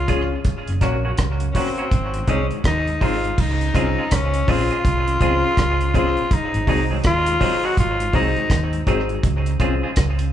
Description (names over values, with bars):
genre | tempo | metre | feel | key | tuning
roots reggae | 82 BPM | 4/4 | swing 63% on 16ths | Db major | A4 = 440 Hz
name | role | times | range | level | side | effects
raspy tenor saxophone | melody | 0.0-8.8 s | C4 to Gb4 | -22 LUFS | left 2 dB | none
mellow tonewheel organ | accompaniment | 0.0-10.3 s | Gb2 to Eb4 | -32 LUFS | left 3 dB | chorus vibrato, slow rotary speaker
vintage muted fingered electric bass | bass | 0.0-10.3 s | Gb1 to Eb2 | -23 LUFS | right 1 dB | none
semi-hollow electric guitar | accompaniment | 0.1-9.9 s | Gb3 to Ab4 | -28 LUFS | right 2 dB | spring reverb, tape echo
dark upright piano | stabs | 0.1-9.8 s | Db4 to Eb5 | -28 LUFS | left 5 dB | tape echo
deep reggae drum kit | drums | 0.1-10.3 s | crash cymbal, hi-hat, kick drum, rim click | -22 LUFS | equal | none
room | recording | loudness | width
moderate large studio reverb, RT60 1.3 s | band playing live in one room, nothing above 10.4 kHz | -17 LUFS | side -10 dB against mid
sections
0.0-3.4 A section; 3.4-10.3 B section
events
none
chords
0.4 Gb; 1.9 Ab; 3.4 Dbmaj7; 6.3 Ab7; 9.2 Dbmaj7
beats
| 0.45 1.18 1.91 2.65 | 3.38 4.11 4.84 5.58 | 6.31 7.04 7.77 8.50 | 9.23 9.97